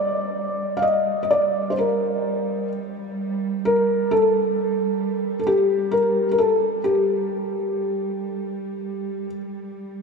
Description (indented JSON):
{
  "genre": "caucasian folk, Caucasian lament",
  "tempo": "64 BPM",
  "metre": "3/4",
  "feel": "rubato",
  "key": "G minor",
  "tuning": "A4 = 442 Hz",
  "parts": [
    { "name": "felt-muted upright piano", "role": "melody", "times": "0.0-9.2 s", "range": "G4 to F5", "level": "-21 LUFS", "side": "left 1 dB", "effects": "slapback echo" },
    { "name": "warm studio cello section", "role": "drone", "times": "0.0-10.0 s", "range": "G3", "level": "-28 LUFS", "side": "right 4 dB", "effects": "none" }
  ],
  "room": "wet cathedral reverb, RT60 5.1 s",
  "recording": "in a vast, echoing space",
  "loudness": "-20 LUFS",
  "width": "side -4 dB against mid",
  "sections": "0.0-10.0 A section",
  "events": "none",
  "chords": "none"
}